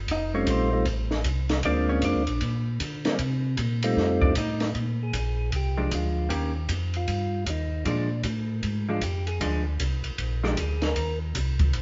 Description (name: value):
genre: soul jazz organ trio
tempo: 154 BPM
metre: 4/4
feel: swing 64% on 8ths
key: Bb mixolydian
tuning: A4 = 443 Hz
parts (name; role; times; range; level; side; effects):
- mellow tonewheel organ; bass; 0.0-11.8 s; F1 to D3; -30 LUFS; equal; slow rotary speaker
- vintage hollow-body jazz guitar; accompaniment; 0.1-10.6 s; Eb3 to Eb5; -32 LUFS; equal; none
- compact cocktail drum kit; drums; 0.1-11.8 s; hi-hat, kick drum, ride cymbal, snare drum; -33 LUFS; equal; none
- percussive tonewheel organ; melody; 0.3-11.2 s; G3 to Bb4; -32 LUFS; equal; slow rotary speaker
room: moderate stone room reverb, RT60 1.3 s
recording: band playing live in one room, nothing above 7.6 kHz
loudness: -27 LUFS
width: mono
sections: 0.0-4.7 A section; 4.7-11.8 A section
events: hollow-body jazz guitar solo 0.0-4.7; tonewheel organ solo 4.7-11.8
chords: 0.1 F7; 1.6 Bb7; 3.2 Cm7; 4.0 F7; 4.7 Bb7; 6.3 Eb7; 7.9 Bb7; 11.0 Eb5